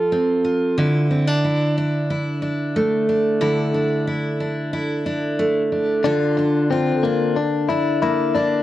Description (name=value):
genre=acoustic pop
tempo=91 BPM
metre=4/4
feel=straight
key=D minor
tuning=A4 = 440 Hz
part: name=picked steel-string acoustic guitar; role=accompaniment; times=0.0-8.6 s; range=D3 to A4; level=-19 LUFS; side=right 1 dB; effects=none
part: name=direct-recorded clean electric guitar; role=second line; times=6.0-8.6 s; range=Bb3 to E4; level=-19 LUFS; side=left 5 dB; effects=digital delay
room=moderate studio reverb, RT60 0.8 s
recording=worn, warbling old tape, cassette tape, warbly pitch drift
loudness=-18 LUFS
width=side -14 dB against mid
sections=0.0-8.6 A section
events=none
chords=0.0 F; 0.8 Dsus2; 6.0 Bb/D